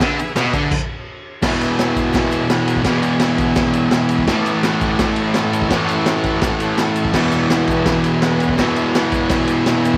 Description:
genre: garage rock duo or trio.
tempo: 168 BPM.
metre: 4/4.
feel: straight.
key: E major.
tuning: A4 = 435 Hz.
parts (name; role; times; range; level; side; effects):
combo organ; sustained chords; 0.0-10.0 s; G#4 to F#5; -29 LUFS; equal; none.
fuzz guitar; riff; 0.0-10.0 s; E2 to A3; -19 LUFS; equal; distortion.
raw garage drum kit; drums; 0.0-10.0 s; crash cymbal, kick drum, ride cymbal, snare drum; -23 LUFS; equal; vintage 12-bit sampler grit.
egg shaker; percussion; 0.0-9.9 s; none; -47 LUFS; equal; none.
room: moderate plate reverb, RT60 2.3 s.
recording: none.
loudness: -17 LUFS.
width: mono.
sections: 0.0-1.4 A section; 1.4-10.0 B section.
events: stop 0.7-1.4.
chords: 0.0 E; 4.3 A; 7.2 E.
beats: | 0.01 0.37 0.72 1.08 | 1.43 1.79 2.14 2.50 | 2.85 3.21 3.57 3.92 | 4.28 4.64 5.00 5.36 | 5.71 6.07 6.43 6.79 | 7.15 7.51 7.87 8.23 | 8.59 8.95 9.31 9.67.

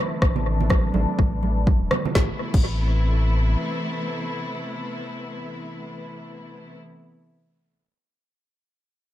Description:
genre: afro house.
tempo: 124 BPM.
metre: 4/4.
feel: swing 60% on 16ths.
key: A minor.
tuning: A4 = 439 Hz.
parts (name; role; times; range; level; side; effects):
bright symphonic string section; sustained chords; 0.0-6.8 s; C3 to B4; -30 LUFS; left 1 dB; sidechain pumping, low-pass filter.
round analog bass; bass; 0.2-3.6 s; E1 to A1; -22 LUFS; equal; sidechain pumping.
deep house drum kit; drums; 0.2-2.7 s; crash cymbal, rim click, snare drum; -28 LUFS; left 1 dB; analog delay.
electronic kick drum; drums; 0.2-2.7 s; none; -20 LUFS; equal; none.
congas; percussion; 0.4-2.1 s; none; -28 LUFS; right 5 dB; analog delay.
room: light reverb, digital ambience.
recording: echo-heavy mix.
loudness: -20 LUFS.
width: side -13 dB against mid.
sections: 0.0-2.2 A section; 2.2-6.0 B section.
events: filter sweep on analog synth bass 0.0-2.2; filter sweep on string section 0.0-2.2.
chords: 0.0 Amadd9.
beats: | 0.22 0.70 1.19 1.67 | 2.15 2.64 3.12 3.61 | 4.09 4.57 5.06 5.54.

